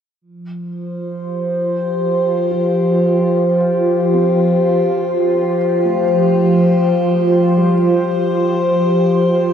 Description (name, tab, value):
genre	ambient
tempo	free time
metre	none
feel	none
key	F major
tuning	A4 = 440 Hz
part	evolving wavetable pad	sustained chords	0.5-9.5 s	F3 to C5	-13 LUFS	equal	phaser, built-in reverb, shimmer reverb
part	felt-muted upright piano	arpeggios	2.5-9.5 s	G3 to F5	-31 LUFS	right 1 dB	none
room	wet huge ambient reverb, RT60 7.5 s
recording	none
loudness	-13 LUFS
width	side -8 dB against mid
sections	0.2-9.5 A section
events	filter sweep on ambient pad 0.2-9.5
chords	0.2 Fsus2